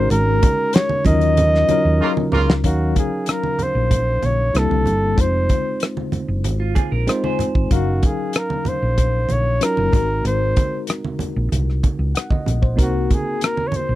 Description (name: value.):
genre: lush 1970s-style soul.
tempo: 95 BPM.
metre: 4/4.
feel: straight.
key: Eb dorian.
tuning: A4 = 440 Hz.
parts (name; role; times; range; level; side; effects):
warm flugelhorn; melody; 0.0-14.0 s; Gb4 to Eb5; -21 LUFS; equal; none.
mellow tine electric piano; accompaniment; 0.0-14.0 s; Gb3 to Gb5; -24 LUFS; left 3 dB; overdrive, slow stereo tremolo.
hollow-body short-scale fingered electric bass; bass; 0.0-14.0 s; F1 to Eb2; -20 LUFS; equal; none.
damped 70s drum kit; drums; 0.1-13.9 s; hi-hat, kick drum, rim click, snare drum; -18 LUFS; equal; none.
congas; percussion; 0.1-13.9 s; none; -27 LUFS; right 4 dB; none.
warm horn section; stabs; 2.0-2.5 s; Db3 to F4; -21 LUFS; right 4 dB; none.
semi-hollow electric guitar; riff; 6.6-7.7 s; F4 to C5; -26 LUFS; right 8 dB; tremolo.
room: little or no reverb.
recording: dry, close 1970s-style studio recording.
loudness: -16 LUFS.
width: side -15 dB against mid.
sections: 0.0-2.6 A section; 2.6-14.0 B section.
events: band accent 0.1-2.6; drum fill 2.0-2.6.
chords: 0.0 Ab9sus4; 1.1 Ebm9; 2.6 Ebm7; 4.5 C7; 5.2 Fm7; 7.7 Ebm7/Gb; 9.9 Ab7; 12.8 Cm7b5.